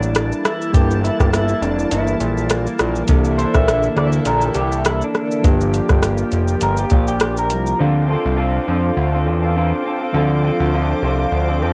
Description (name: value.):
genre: indie pop, bedroom pop.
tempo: 102 BPM.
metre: 4/4.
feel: swing 55% on 16ths.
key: G dorian.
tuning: A4 = 440 Hz.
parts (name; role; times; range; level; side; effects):
electric guitar through a small old amp; accompaniment; 0.0-11.7 s; D3 to E5; -25 LUFS; equal; analog chorus, warbly pitch drift, cassette tape.
soft electric-piano-like synth keys; accompaniment; 0.0-11.7 s; E3 to G5; -27 LUFS; equal; chorus, tremolo, cassette tape.
lush unison pad; sustained chords; 0.0-11.7 s; D3 to D6; -27 LUFS; equal; chorus, cassette tape.
fat analog bass; bass; 0.0-11.7 s; F1 to F2; -21 LUFS; equal; tube saturation.
soft vintage rhythm box; drums; 0.0-7.8 s; hi-hat, kick drum, rim click, shaker; -20 LUFS; equal; cassette tape.
room: light reverb, digital ambience.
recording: home recording on cassette.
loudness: -18 LUFS.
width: mono.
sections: 0.0-7.8 A section; 7.8-11.7 B section.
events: clean electric guitar solo 0.0-7.8; synth keys fill 11.3-11.7.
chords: 0.0 Gm69; 3.1 C13; 5.4 Gm7; 7.8 Dm7.